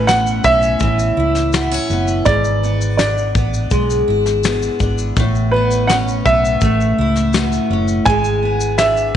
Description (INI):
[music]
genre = acoustic pop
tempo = 83 BPM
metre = 4/4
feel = straight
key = A major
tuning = A4 = 440 Hz
[part]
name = warm upright piano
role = melody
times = 0.0-9.2 s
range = B4 to G#5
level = -18 LUFS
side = right 2 dB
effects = none
[part]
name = picked steel-string acoustic guitar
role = accompaniment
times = 0.0-9.2 s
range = G#2 to E4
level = -18 LUFS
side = equal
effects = double-tracked left and right
[part]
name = vintage muted fingered electric bass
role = bass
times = 0.0-9.2 s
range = F#1 to C#2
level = -19 LUFS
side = equal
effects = none
[part]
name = soft brush drum kit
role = drums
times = 0.1-9.2 s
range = kick drum, shaker, snare drum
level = -20 LUFS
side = left 3 dB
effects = none
[sound]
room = moderate plate reverb, RT60 2.3 s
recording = 1960s-style stereo, nothing above 10.9 kHz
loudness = -13 LUFS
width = side -10 dB against mid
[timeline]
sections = 0.0-9.2 A section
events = none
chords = 0.0 Aadd9; 2.3 E7/G#; 5.2 Aadd9; 8.1 E7/G#